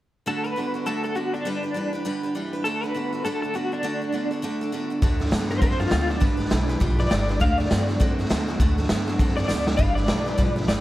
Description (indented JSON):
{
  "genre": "rockabilly",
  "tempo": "202 BPM",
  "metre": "4/4",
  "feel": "swing 61% on 8ths",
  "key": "D major",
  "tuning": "A4 = 440 Hz",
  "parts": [
    { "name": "electric guitar through a small old amp", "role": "melody", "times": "0.3-10.8 s", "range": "D4 to F5", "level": "-28 LUFS", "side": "left 1 dB", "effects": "tremolo, tape echo" },
    { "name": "picked steel-string acoustic guitar", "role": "accompaniment", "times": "0.3-10.8 s", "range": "D3 to B4", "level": "-32 LUFS", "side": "left 2 dB", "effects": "none" },
    { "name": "electric guitar through a small old amp", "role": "riff", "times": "0.3-10.8 s", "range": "G2 to C4", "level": "-29 LUFS", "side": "right 3 dB", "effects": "none" },
    { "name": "upright bass", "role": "bass", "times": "5.0-10.8 s", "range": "G1 to G2", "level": "-26 LUFS", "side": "equal", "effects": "none" },
    { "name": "raw garage drum kit", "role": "drums", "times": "5.0-10.8 s", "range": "hi-hat, kick drum, snare drum", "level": "-22 LUFS", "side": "equal", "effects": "none" }
  ],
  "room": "light reverb, small room ambience",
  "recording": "none",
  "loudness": "-21 LUFS",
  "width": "side -15 dB against mid",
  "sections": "0.3-5.0 A section; 5.0-10.8 B section",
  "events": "drum fill 9.5",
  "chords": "0.3 D; 1.5 G; 2.6 D; 6.2 G; 7.4 D; 9.8 G"
}